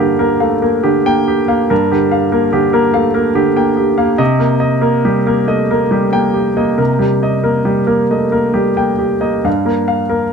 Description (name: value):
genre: neoclassical minimalist piano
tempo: 44-49 BPM (dotted quarters)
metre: 6/8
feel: rubato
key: G minor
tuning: A4 = 442 Hz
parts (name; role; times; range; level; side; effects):
- warm concert grand piano; solo; 0.0-10.3 s; G2 to G5; -12 LUFS; equal; none
room: light reverb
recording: close, detailed microphones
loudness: -12 LUFS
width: side -6 dB against mid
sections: 0.0-10.3 A section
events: none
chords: 0.0 Gm7; 4.2 Cm7; 9.5 Gm7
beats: 0.41 | 1.70 2.96 | 4.20 5.48 | 6.79 8.12 | 9.46